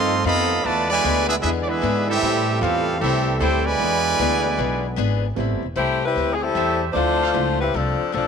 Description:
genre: jazz, big band swing.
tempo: 152 BPM.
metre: 4/4.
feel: swing 66% on 8ths.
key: A minor.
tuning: A4 = 440 Hz.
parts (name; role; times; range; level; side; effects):
brilliant trumpet section; melody; 0.0-5.0 s; C4 to C6; -21 LUFS; right 2 dB; none.
bright trombone section; second line; 0.0-5.0 s; B2 to G4; -27 LUFS; right 13 dB; none.
picked acoustic archtop guitar; accompaniment; 0.0-8.3 s; A2 to A4; -27 LUFS; left 14 dB; none.
clear trombone section; sustained chords; 0.0-5.4 s; C3 to Eb4; -31 LUFS; equal; none.
upright bass; bass; 0.0-8.3 s; E1 to A2; -25 LUFS; equal; none.
clear baby grand piano; accompaniment; 5.4-7.6 s; F3 to E4; -30 LUFS; right 13 dB; none.
bright saxophone section; melody; 5.8-8.3 s; F3 to C5; -20 LUFS; left 4 dB; none.
clear trumpet section; stabs; 6.6-7.3 s; G4 to F5; -30 LUFS; right 11 dB; tape echo.
room: light reverb, small room ambience.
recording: 1960s-style stereo with parts hard left and right.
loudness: -18 LUFS.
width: side -6 dB against mid.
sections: 0.0-5.4 A section; 5.4-8.3 B section.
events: none.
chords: 0.0 F7; 0.6 E7; 2.2 Am7; 3.8 E7; 5.4 Am7; 6.9 Dm7.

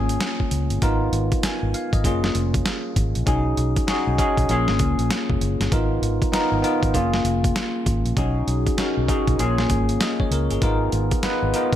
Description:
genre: R&B, new jack swing.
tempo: 98 BPM.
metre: 4/4.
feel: swing 63% on 16ths.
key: G# dorian.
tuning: A4 = 441 Hz.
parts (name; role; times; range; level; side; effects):
bell-like tine electric piano; accompaniment; 0.0-11.8 s; A#3 to G#5; -23 LUFS; left 1 dB; lush chorus.
vintage muted fingered electric bass; bass; 0.0-11.8 s; E#1 to C#2; -23 LUFS; equal; none.
boom bap sampler-style drum kit; drums; 0.1-11.8 s; hi-hat, kick drum, snare drum; -24 LUFS; equal; overdrive.
room: light reverb, digital ambience.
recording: none.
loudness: -19 LUFS.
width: side -11 dB against mid.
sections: 0.0-11.8 A section.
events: none.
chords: 0.0 A#m7; 0.8 G#m69; 2.0 F#maj9; 3.3 B69; 4.5 A#m7; 5.7 G#m69; 6.9 F#maj9; 8.2 B69; 9.4 A#m7; 10.6 G#m69.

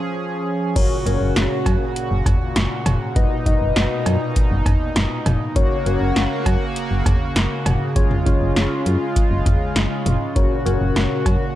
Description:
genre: synth-pop.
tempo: 100 BPM.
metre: 4/4.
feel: straight.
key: F# major.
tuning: A4 = 440 Hz.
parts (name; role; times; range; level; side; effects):
chorused pulse-width pad; sustained chords; 0.0-11.6 s; A#2 to G#4; -24 LUFS; equal; none.
tine electric piano; accompaniment; 0.8-11.4 s; C#4 to D#5; -24 LUFS; left 3 dB; phaser.
solid FM bass; bass; 0.8-11.4 s; E#1 to F#2; -21 LUFS; equal; none.
electro analog drum machine; drums; 0.8-11.4 s; cowbell, crash cymbal, hi-hat, kick drum, snare drum, toms; -20 LUFS; equal; none.
room: light reverb, digital ambience.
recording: dark, warm production.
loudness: -17 LUFS.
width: side -14 dB against mid.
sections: 0.8-11.6 A section.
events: break 0.0-0.8.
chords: 0.0 C#; 0.8 F#; 3.2 Bmaj7/F#; 5.6 F#; 8.0 C#/F#; 10.4 F#.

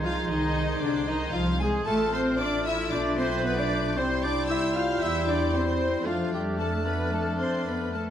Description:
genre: quick classical-period movement for symphony orchestra.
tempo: 114 BPM.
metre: 4/4.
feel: rubato.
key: C major.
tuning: A4 = 440 Hz.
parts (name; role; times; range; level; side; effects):
clear chamber violin section; melody; 0.0-8.0 s; D5 to F6; -36 LUFS; left 2 dB; none.
bright oboe; second line; 0.0-8.1 s; B4 to D5; -39 LUFS; right 2 dB; none.
mellow hollow concert flute; second line; 0.0-8.1 s; F6 to Ab6; -37 LUFS; left 2 dB; none.
rich chamber violin section; second line; 0.0-8.1 s; D4 to F5; -37 LUFS; left 5 dB; none.
warm clarinet; second line; 0.0-8.1 s; D4 to F4; -34 LUFS; left 3 dB; none.
mellow bassoon; accompaniment; 0.0-8.1 s; G3 to A3; -34 LUFS; right 1 dB; none.
warm chamber viola section; accompaniment; 0.0-8.1 s; D4 to F5; -35 LUFS; right 1 dB; none.
warm French horn section; sustained chords; 0.0-8.1 s; D3 to F4; -34 LUFS; left 3 dB; none.
clear trumpet section; stabs; 0.0-8.1 s; D4 to F5; -34 LUFS; right 1 dB; none.
rich chamber double bass section; bass; 0.0-8.1 s; A1 to F2; -32 LUFS; right 2 dB; none.
warm chamber cello section; bass; 0.0-8.1 s; D3 to F4; -32 LUFS; equal; none.
room: moderate scoring stage reverb, RT60 1.6 s.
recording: dark, warm production.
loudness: -24 LUFS.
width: side -10 dB against mid.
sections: 0.0-8.1 A section.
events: none.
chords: 0.0 Ab/C; 1.9 F/A; 2.9 G7/B; 4.0 C; 5.0 C/E; 6.1 Dm/F.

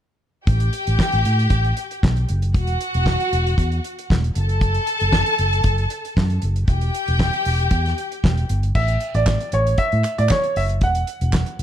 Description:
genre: disco.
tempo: 116 BPM.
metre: 4/4.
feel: straight.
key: unclear.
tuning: A4 = 440 Hz.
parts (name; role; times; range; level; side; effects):
rich studio violin section; second line; 0.5-8.5 s; F#4 to A5; -23 LUFS; left 2 dB; none.
fingered electric bass; bass; 0.5-11.6 s; E1 to A2; -20 LUFS; equal; none.
damped 70s drum kit; drums; 0.5-11.6 s; crash cymbal, handclaps, hi-hat, kick drum, snare drum; -21 LUFS; equal; none.
clear grand piano; melody; 8.8-11.6 s; C#5 to F#5; -22 LUFS; right 2 dB; plate reverb.
group handclap; percussion; 9.3-11.5 s; none; -32 LUFS; right 4 dB; none.
room: light reverb.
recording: dark, warm production.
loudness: -17 LUFS.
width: side -10 dB against mid.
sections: 0.5-8.7 A section; 8.7-11.6 B section.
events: none.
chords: 0.5 Gmaj7sus2; 2.5 Esus2; 4.4 F#m; 6.7 Em; 8.7 F#m7; 10.8 Esus2.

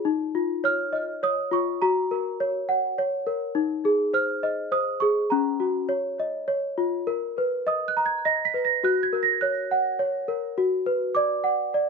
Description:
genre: children's music, lullaby.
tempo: 103 BPM.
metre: 3/4.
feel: straight.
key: F# major.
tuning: A4 = 440 Hz.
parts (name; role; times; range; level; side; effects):
small celesta; solo; 0.0-11.9 s; C#4 to B6; -22 LUFS; equal; tape echo.
room: light reverb.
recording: dark, warm production, nothing above 7.7 kHz.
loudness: -22 LUFS.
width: side -4 dB against mid.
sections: 0.0-11.9 A section.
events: none.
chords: 0.0 C#add9; 1.8 F#; 3.6 G#; 5.3 F#/C#; 5.9 C#add9; 7.1 Bmaj7; 8.8 F#; 10.6 Bm.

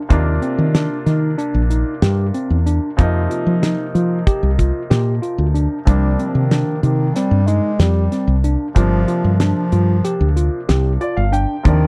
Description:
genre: progressive instrumental, band music in an uneven meter.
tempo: 187 BPM (eighths).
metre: 9/8.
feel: straight.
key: C minor.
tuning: A4 = 440 Hz.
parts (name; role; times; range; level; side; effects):
clear concert grand piano; accompaniment; 0.0-11.9 s; C3 to G5; -28 LUFS; equal; none.
tine electric piano; arpeggios; 0.1-11.9 s; C4 to G4; -25 LUFS; equal; overdrive.
woody fretless electric bass; bass; 0.1-11.9 s; G1 to F3; -18 LUFS; equal; none.
damped 70s drum kit; drums; 0.1-11.8 s; hi-hat, kick drum, snare drum; -19 LUFS; equal; none.
mellow bass clarinet; melody; 5.9-11.9 s; Eb3 to Ab3; -22 LUFS; equal; none.
room: little or no reverb.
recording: dry, close 1970s-style studio recording.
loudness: -17 LUFS.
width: mono.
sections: 0.0-11.9 A section.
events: grand piano fill 10.7-11.6.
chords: 0.1 Ebmaj7; 3.0 Cm7; 8.8 Gm7.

